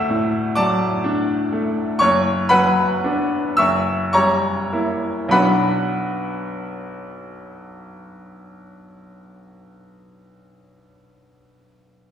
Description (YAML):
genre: classical, romantic nocturne for solo piano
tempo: 31-43 BPM (dotted quarters)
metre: 12/8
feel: rubato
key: B minor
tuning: A4 = 441 Hz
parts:
  - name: bright baby grand piano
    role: solo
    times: 0.0-12.1 s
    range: F#1 to F#6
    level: -17 LUFS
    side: equal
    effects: none
room: wet recital hall reverb, RT60 1.4 s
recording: recorded in a church or concert hall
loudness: -17 LUFS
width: side -9 dB against mid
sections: 0.0-12.1 A section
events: none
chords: 0.0 D; 2.0 Bm/F#; 3.6 F#7b9; 5.3 Bm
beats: 0.58 2.01 3.59 | 5.34 7.25 9.02 10.78